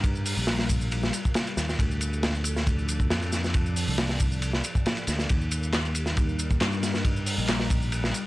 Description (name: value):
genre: breakbeat, breaks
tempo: 137 BPM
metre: 4/4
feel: straight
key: unclear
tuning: A4 = 440 Hz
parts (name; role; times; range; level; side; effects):
- phased analog pad; sustained chords; 0.0-8.3 s; F3 to Bb4; -36 LUFS; left 2 dB; phaser, chorus, vintage 12-bit sampler grit, sidechain pumping
- picked electric bass; bass; 0.0-8.1 s; Bb1 to G2; -28 LUFS; equal; none
- crunchy breakbeat drum kit; drums; 0.0-8.2 s; hi-hat, kick drum, ride cymbal, snare drum; -26 LUFS; equal; none
- electronic shaker and handclaps; drums; 0.0-8.2 s; none; -36 LUFS; equal; none
room: light reverb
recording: dry, gritty hardware recording, cassette tape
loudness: -24 LUFS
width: side -18 dB against mid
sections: 0.0-8.3 A section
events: none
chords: 0.0 Eb (rootless); 1.8 Dm; 5.3 Eb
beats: | 0.04 0.48 0.92 1.35 | 1.79 2.23 2.67 3.11 | 3.54 3.98 4.42 4.86 | 5.30 5.73 6.17 6.61 | 7.05 7.49 7.92